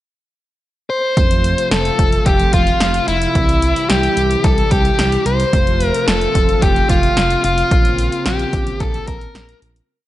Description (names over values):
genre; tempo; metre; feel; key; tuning
synth-pop; 110 BPM; 4/4; straight; F major; A4 = 441 Hz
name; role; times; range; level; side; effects
smooth overdriven lead guitar; melody; 0.9-9.6 s; E4 to C5; -17 LUFS; left 1 dB; slapback echo
brassy analog pad; sustained chords; 1.2-9.9 s; C3 to F4; -24 LUFS; right 1 dB; chorus
smooth gliding synth bass; bass; 1.2-9.8 s; F1 to C2; -20 LUFS; equal; none
punchy analog drum machine; drums; 1.2-9.9 s; hi-hat, kick drum, snare drum; -17 LUFS; equal; none
room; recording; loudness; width
moderate lush hall reverb, RT60 1.8 s, digital ambience; big arena sound, nothing above 10.9 kHz; -13 LUFS; side -14 dB against mid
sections
0.0-1.2 pickup bar; 1.2-9.9 verse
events
fade-out 7.7-9.9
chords
0.0 N.C.; 1.2 F; 3.4 C; 5.5 F; 7.7 Bbmadd9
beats
0.08 0.62 | 1.17 1.71 2.26 2.81 | 3.35 3.90 4.44 4.99 | 5.53 6.08 6.62 7.17 | 7.71 8.26 8.80 9.35